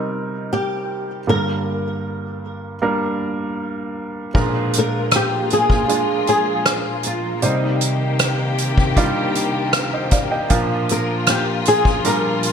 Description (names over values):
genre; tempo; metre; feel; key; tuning
pop ballad; 78 BPM; 4/4; straight; C minor; A4 = 441 Hz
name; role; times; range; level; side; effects
flamenco guitar; melody; 0.0-12.5 s; Eb4 to Bb4; -21 LUFS; left 2 dB; ensemble chorus
clear concert grand piano; accompaniment; 0.0-12.5 s; G2 to G5; -22 LUFS; right 2 dB; none
soft-mallet drum kit; drums; 4.3-12.5 s; crash cymbal, hi-hat, kick drum, rim click; -20 LUFS; equal; gated reverb
warm studio string section; sustained chords; 4.4-12.5 s; Bb2 to G4; -24 LUFS; left 3 dB; none
room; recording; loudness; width
moderate plate reverb, RT60 2.4 s; bright 1980s-style digital production; -17 LUFS; side -7 dB against mid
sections
0.0-4.4 A section; 4.4-12.5 B section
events
none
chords
0.0 Cm7; 1.3 Gm; 4.4 Bb7; 7.4 Cmadd9; 10.5 Gm7/Bb